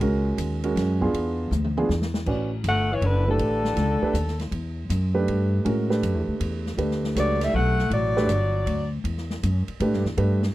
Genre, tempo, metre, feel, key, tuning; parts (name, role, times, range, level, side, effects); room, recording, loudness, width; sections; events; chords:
modal jazz; 159 BPM; 3/4; swing 66% on 8ths; A4 = 440 Hz
warm concert grand piano; accompaniment; 0.0-10.4 s; Ab3 to D5; -26 LUFS; right 3 dB
upright bass; bass; 0.0-10.5 s; F#1 to A2; -24 LUFS; equal
open jazz drum kit; drums; 0.0-10.5 s; crash cymbal, hi-hat, kick drum, ride cymbal, snare drum, toms; -35 LUFS; equal
mellow soprano saxophone; melody; 2.7-4.4, 7.2-8.9 s; A4 to F#5; -26 LUFS; left 1 dB
growling alto saxophone; second line; 2.7-4.4, 7.2-8.9 s; D3 to A3; -30 LUFS; left 3 dB
little or no reverb; dry, close 1970s-style studio recording; -22 LUFS; side -16 dB against mid
0.0-2.3 A section; 2.3-10.5 B section
drum fill 1.5-2.3
0.0 Ab9sus4; 1.1 E7b9; 2.3 A13sus4